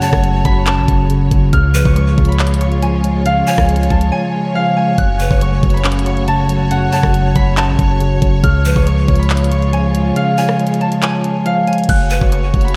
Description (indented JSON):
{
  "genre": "hip hop, trap",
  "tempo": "139 BPM",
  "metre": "4/4",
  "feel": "half-time",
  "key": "F# harmonic minor",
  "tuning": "A4 = 440 Hz",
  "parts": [
    { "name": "concert harp", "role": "melody", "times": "0.0-12.8 s", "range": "E#5 to F#6", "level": "-22 LUFS", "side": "equal", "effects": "delay" },
    { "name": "breathy large pan pipes", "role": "second line", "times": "0.0-12.3 s", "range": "B4 to C#5", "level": "-28 LUFS", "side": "equal", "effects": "delay" },
    { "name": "mellow tine electric piano", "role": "accompaniment", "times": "0.0-11.9 s", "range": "F#2 to C#5", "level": "-19 LUFS", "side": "equal", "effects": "none" },
    { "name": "warm studio string section", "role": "sustained chords", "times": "0.0-12.8 s", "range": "C#3 to C#5", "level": "-25 LUFS", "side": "equal", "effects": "none" },
    { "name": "trap drum kit", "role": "drums", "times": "0.0-12.7 s", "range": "crash cymbal, handclaps, hi-hat, kick drum, rim click", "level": "-19 LUFS", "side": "equal", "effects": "none" },
    { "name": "warm 808-style bass", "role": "bass", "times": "0.1-12.8 s", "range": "F#1 to C#2", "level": "-19 LUFS", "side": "equal", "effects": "none" }
  ],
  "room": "moderate lush hall reverb, RT60 1.6 s, digital ambience",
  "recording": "dreamy mix soaked in reverb",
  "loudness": "-14 LUFS",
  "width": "mono",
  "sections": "0.0-11.9 A section",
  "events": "break 4.1-5.0; kick muted 10.2-11.9",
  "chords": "0.0 F#m; 1.5 C#; 5.0 F#m; 8.4 C#; 11.9 F#m",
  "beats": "0.23 0.67 1.10 | 1.53 1.96 2.39 2.83 | 3.26 3.69 4.12 4.55 | 4.98 5.42 5.85 6.28 | 6.71 7.14 7.57 8.01 | 8.44 8.87 9.30 9.73 | 10.16 10.60 11.03 11.46 | 11.89 12.32 12.75"
}